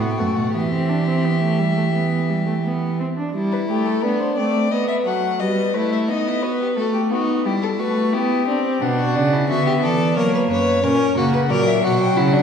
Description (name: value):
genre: classical, baroque-style fugue for string quartet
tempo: 88 BPM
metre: 4/4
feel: straight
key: E minor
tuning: A4 = 440 Hz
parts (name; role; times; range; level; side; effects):
- dark violin; melody; 0.0-12.4 s; F#4 to G5; -24 LUFS; left 6 dB; none
- warm violin; second line; 0.0-12.4 s; A3 to C#5; -24 LUFS; left 2 dB; none
- warm viola; accompaniment; 0.0-12.4 s; F#3 to D4; -21 LUFS; equal; none
- rich cello; bass; 0.0-3.0, 8.8-12.4 s; F#2 to F#3; -21 LUFS; right 3 dB; none
room: wet scoring stage reverb, RT60 1.6 s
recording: heard from further back in the room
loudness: -17 LUFS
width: side -7 dB against mid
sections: 0.0-3.3 A section; 3.3-12.4 B section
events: none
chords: 0.0 B5/A; 0.5 Em; 3.3 Em/G; 4.7 B; 6.1 B7; 7.5 Em/G; 8.8 Bm; 10.2 F#; 11.5 F#7/A#